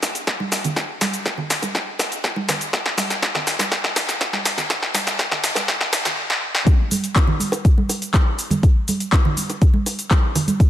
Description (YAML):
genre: house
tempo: 122 BPM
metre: 4/4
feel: straight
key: none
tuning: none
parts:
  - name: deep house drum kit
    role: drums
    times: 0.0-10.7 s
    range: cabasa, handclaps, hi-hat, snare drum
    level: -21 LUFS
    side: left 1 dB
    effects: overdrive, sidechain pumping on hats, high-pass filter on hats, sidechain pumping on perc, high-pass filter on perc, high-pass filter on snare, high-pass filter on room
  - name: bongos and congas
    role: percussion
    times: 0.0-10.6 s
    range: none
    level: -25 LUFS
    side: right 3 dB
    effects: sidechain pumping on perc
  - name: electronic kick drum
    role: drums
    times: 0.3-10.7 s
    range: none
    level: -16 LUFS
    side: equal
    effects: high-pass filter on kick
room: light reverb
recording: high-pass filter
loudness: -18 LUFS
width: side -12 dB against mid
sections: 0.0-6.7 A section; 6.7-10.7 B section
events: build-up 0.0-6.7; drum fill 0.0-6.2, 6.3-6.7; drop 6.7-10.7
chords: none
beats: 0.27 | 0.76 1.26 1.75 2.24 | 2.73 3.22 3.71 4.21 | 4.70 5.19 5.68 6.17 | 6.67 7.16 7.65 8.14 | 8.63 9.12 9.62 10.11 | 10.60